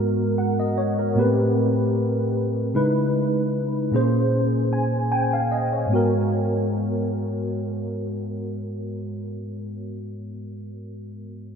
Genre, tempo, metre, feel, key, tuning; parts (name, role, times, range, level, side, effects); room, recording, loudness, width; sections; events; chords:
R&B; 76 BPM; 4/4; swing 54% on 16ths; A4 = 440 Hz
mellow tine electric piano; accompaniment; 0.0-11.6 s; G#2 to G#5; -21 LUFS; equal; ensemble chorus
wet huge ambient reverb, RT60 4.6 s; dreamy mix soaked in reverb; -20 LUFS; side -6 dB against mid
0.0-5.9 A section; 5.9-9.1 B section
tine electric piano fill 4.3-5.9
0.0 G#m9; 1.2 Am9; 2.7 C#m9; 3.9 A#m9; 5.9 G#m9